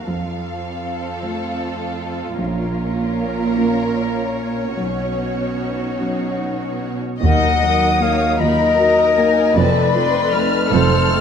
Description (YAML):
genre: cinematic, emotional film score for orchestra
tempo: 51 BPM (dotted quarters)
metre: 6/8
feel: rubato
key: Eb minor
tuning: A4 = 439 Hz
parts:
  - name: muted symphonic violin section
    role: second line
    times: 0.0-11.2 s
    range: F#4 to F5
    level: -24 LUFS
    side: left 2 dB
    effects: none
  - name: dark concert grand piano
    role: accompaniment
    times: 0.0-11.2 s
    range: Bb1 to Gb4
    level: -23 LUFS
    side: left 1 dB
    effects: none
  - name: muted studio viola section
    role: accompaniment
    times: 0.0-11.2 s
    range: Bb3 to Bb4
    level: -26 LUFS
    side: right 2 dB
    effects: none
  - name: muted symphonic cello section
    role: bass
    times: 0.0-11.2 s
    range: Eb2 to B2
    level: -24 LUFS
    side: right 5 dB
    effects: none
  - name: muted symphonic violin section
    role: melody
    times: 7.2-11.2 s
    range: Ab5 to F6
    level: -24 LUFS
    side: left 3 dB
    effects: none
  - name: mellow concert flute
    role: second line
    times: 7.2-11.2 s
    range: C5 to Gb5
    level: -17 LUFS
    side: left 4 dB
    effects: none
  - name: dark French horn section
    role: sustained chords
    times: 7.2-11.2 s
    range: Gb3 to Eb4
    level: -26 LUFS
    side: left 4 dB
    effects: none
  - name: muted symphonic double bass section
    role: bass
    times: 7.2-11.2 s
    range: F1 to Eb2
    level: -22 LUFS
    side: right 4 dB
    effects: none
room: wet scoring stage reverb, RT60 1.5 s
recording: none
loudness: -16 LUFS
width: side -7 dB against mid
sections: 0.0-7.2 A section; 7.2-11.2 B section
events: none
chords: 0.1 F; 2.4 Bbm; 4.8 Badd9; 7.2 Ebmadd9; 9.6 F